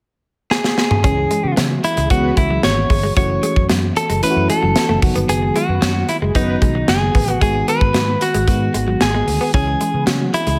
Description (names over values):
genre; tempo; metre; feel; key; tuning
1980s-style pop; 113 BPM; 4/4; straight; C# minor; A4 = 440 Hz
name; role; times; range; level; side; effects
direct-recorded clean electric guitar; melody; 0.5-10.6 s; D#4 to C#5; -22 LUFS; equal; delay
modern studio drum kit; drums; 0.5-10.6 s; hi-hat, kick drum, snare drum, toms; -21 LUFS; equal; gated reverb
FM electric piano; accompaniment; 1.0-10.6 s; C#3 to G#4; -25 LUFS; equal; chorus
direct-recorded clean electric guitar; riff; 1.0-10.5 s; F#3 to C#4; -28 LUFS; equal; lush chorus, delay
fingered electric bass; bass; 1.0-10.6 s; F#1 to C#3; -23 LUFS; equal; none
mellow synth brass; stabs; 1.2-10.6 s; F#3 to C#5; -30 LUFS; equal; chorus
room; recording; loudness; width
light reverb, studio reverb; none; -17 LUFS; mono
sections
0.0-1.0 A section; 1.0-10.6 B section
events
drum fill 0.5-1.0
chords
0.0 N.C.; 1.0 C#m; 3.2 F#m7; 5.0 B/F#; 7.4 G#m7; 9.5 C#m